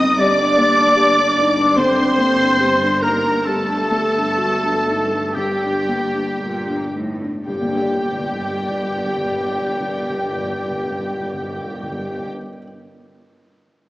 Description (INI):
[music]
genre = cinematic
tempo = 55-77 BPM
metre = 4/4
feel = rubato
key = G minor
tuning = A4 = 440 Hz
[part]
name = rich studio violin section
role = melody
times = 0.0-12.3 s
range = G5 to Eb6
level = -26 LUFS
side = left 1 dB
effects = none
[part]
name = clear oboe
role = second line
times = 0.0-12.3 s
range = G4 to G5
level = -25 LUFS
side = equal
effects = none
[part]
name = clear studio violin section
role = second line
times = 0.0-12.3 s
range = G4 to Eb5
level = -29 LUFS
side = equal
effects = none
[part]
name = mellow clarinet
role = second line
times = 0.0-12.3 s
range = G4 to Eb5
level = -25 LUFS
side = equal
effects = none
[part]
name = felt-muted upright piano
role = accompaniment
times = 0.0-13.9 s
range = G2 to D5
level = -23 LUFS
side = left 1 dB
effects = none
[part]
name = rich studio viola section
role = accompaniment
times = 0.0-12.3 s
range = G4 to Eb5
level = -26 LUFS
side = equal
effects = none
[part]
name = warm French horn section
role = sustained chords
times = 0.0-12.3 s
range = G3 to Eb4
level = -26 LUFS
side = left 1 dB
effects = none
[part]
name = warm studio cello section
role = bass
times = 0.0-12.3 s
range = G2 to Bb2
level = -32 LUFS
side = right 1 dB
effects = none
[part]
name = warm studio double bass section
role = bass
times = 0.0-12.3 s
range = G1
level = -30 LUFS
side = right 1 dB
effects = none
[part]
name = mellow large flute ensemble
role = second line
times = 0.2-12.3 s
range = D5 to D6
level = -25 LUFS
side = equal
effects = none
[part]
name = timpani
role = percussion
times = 5.4-12.3 s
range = G2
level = -32 LUFS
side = equal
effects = none
[sound]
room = wet scoring stage reverb, RT60 1.9 s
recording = small speaker sound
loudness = -16 LUFS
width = side -16 dB against mid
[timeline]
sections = 0.0-7.5 A section; 7.5-11.7 B section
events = slowing down 0.0-7.5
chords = 0.2 Gm; 3.5 D/G; 5.3 Gm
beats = | 0.18 0.97 1.77 2.60 | 3.46 4.37 5.35 6.39 | 7.47 8.52 9.59 10.65